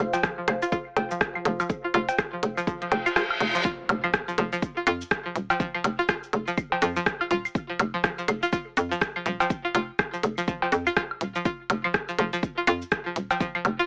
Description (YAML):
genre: minimal techno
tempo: 123 BPM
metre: 4/4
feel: swing 60% on 16ths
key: unclear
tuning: A4 = 440 Hz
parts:
  - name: hollow knocking FM bass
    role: bass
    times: 0.0-13.8 s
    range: Eb1 to F2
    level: -26 LUFS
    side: equal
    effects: sidechain pumping
  - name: warbly tape-like pad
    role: texture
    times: 0.0-3.6 s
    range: F4 to F5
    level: -37 LUFS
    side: equal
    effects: chorus, built-in reverb, sidechain pumping
  - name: string-like resonator pluck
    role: riff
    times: 0.1-13.8 s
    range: F3 to F4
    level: -28 LUFS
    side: equal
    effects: chorus, sidechain pumping, tape echo
  - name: minimal click drum kit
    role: drums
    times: 0.1-13.8 s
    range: hi-hat, rim click, shaker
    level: -27 LUFS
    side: equal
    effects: none
  - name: cowbell, bongos, claves and woodblock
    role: percussion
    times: 0.1-13.8 s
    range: none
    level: -28 LUFS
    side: equal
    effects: none
  - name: electronic kick drum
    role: drums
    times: 0.2-13.5 s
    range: none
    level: -29 LUFS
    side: equal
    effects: none
  - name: reverse cymbal and impact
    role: sound effects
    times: 2.9-5.6 s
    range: none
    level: -30 LUFS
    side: equal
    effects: none
room: light reverb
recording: AM radio sound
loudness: -23 LUFS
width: side -36 dB against mid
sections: 0.0-3.6 A section; 3.6-13.9 B section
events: reverse cymbal 2.9-3.6; kick drops out 3.2-3.6; band accent 3.2; drop 3.6-13.9; impact 3.6-5.6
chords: 0.0 F5